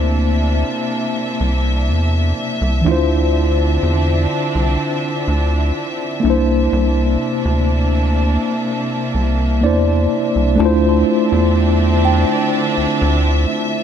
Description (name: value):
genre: contemporary R&B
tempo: 62 BPM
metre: 4/4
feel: straight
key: D minor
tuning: A4 = 435 Hz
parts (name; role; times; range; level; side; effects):
- mellow tine electric piano; accompaniment; 0.0-13.8 s; E3 to D5; -18 LUFS; left 1 dB; medium stereo tremolo
- dark studio string section; sustained chords; 0.0-13.8 s; C3 to E5; -21 LUFS; right 1 dB; none
- rubbery square bass; bass; 0.0-13.5 s; C2 to E2; -16 LUFS; equal; none
- soft synth bell; texture; 10.6-13.8 s; G5 to C6; -27 LUFS; right 3 dB; chorus, phaser, tape echo
room: light reverb, digital ambience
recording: none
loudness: -14 LUFS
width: side -8 dB against mid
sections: 0.0-10.6 A section; 10.6-13.8 B section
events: tine electric piano fill 9.1-10.6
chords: 0.0 C9; 2.9 Dm9; 6.2 C9; 10.6 Dm9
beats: 0.92 1.89 | 2.85 3.82 4.79 5.76 | 6.73 7.69 8.66 9.63 | 10.60 11.56 12.53 13.50